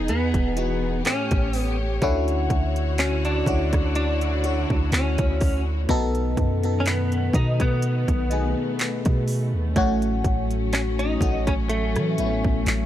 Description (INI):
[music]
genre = contemporary R&B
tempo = 62 BPM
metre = 4/4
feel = swing 54% on 16ths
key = unclear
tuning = A4 = 441 Hz
[part]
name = direct-recorded clean electric guitar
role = melody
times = 0.0-12.9 s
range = A3 to D#4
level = -28 LUFS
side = equal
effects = ensemble chorus, tape echo
[part]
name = FM electric piano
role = accompaniment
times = 0.0-12.9 s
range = A2 to C#5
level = -27 LUFS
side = left 2 dB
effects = chorus, phaser
[part]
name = warm studio string section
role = sustained chords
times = 0.0-12.9 s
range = D3 to C#5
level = -31 LUFS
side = equal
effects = none
[part]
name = long sustained 808-style bass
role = bass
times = 0.0-12.9 s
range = E1 to E3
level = -24 LUFS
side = equal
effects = none
[part]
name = soft synth bell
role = texture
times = 0.0-1.2, 8.3-10.2 s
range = D#5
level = -43 LUFS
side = left 1 dB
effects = none
[part]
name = trap drum kit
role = drums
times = 0.1-12.9 s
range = handclaps, hi-hat, kick drum, rim click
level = -25 LUFS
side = equal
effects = none
[sound]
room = digital ambience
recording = dry, gritty hardware recording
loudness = -20 LUFS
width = side -12 dB against mid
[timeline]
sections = 0.0-12.9 A section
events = none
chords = 0.0 Emaj7; 1.1 A7; 2.0 Dmaj9; 5.9 B7; 9.8 A6